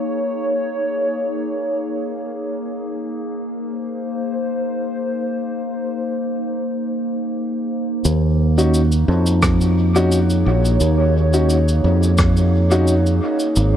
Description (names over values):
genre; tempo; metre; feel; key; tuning
ambient dub; 87 BPM; 4/4; swing 54% on 16ths; unclear; A4 = 441 Hz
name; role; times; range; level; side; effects
warbly tape-like pad; sustained chords; 0.0-13.8 s; Bb3 to Db5; -21 LUFS; equal; chorus, built-in reverb
cabasa and rim click; drums; 8.0-13.7 s; none; -26 LUFS; equal; dub echo
fingered electric bass; bass; 8.1-13.8 s; Ab1 to F2; -15 LUFS; equal; none
dark upright piano; stabs; 8.6-12.9 s; Db4 to Gb4; -23 LUFS; left 2 dB; dub echo
electronic kick drum; drums; 9.4-12.3 s; none; -19 LUFS; equal; overdrive
room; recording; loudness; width
light reverb; none; -17 LUFS; side -10 dB against mid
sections
0.0-8.0 A section; 8.0-13.8 B section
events
none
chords
0.0 Eb5; 2.5 Ab; 8.0 Ebm7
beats
0.46 1.15 1.84 | 2.53 3.22 3.91 4.60 | 5.29 5.98 6.67 7.36 | 8.05 8.74 9.43 10.12 | 10.81 11.50 12.19 12.88 | 13.56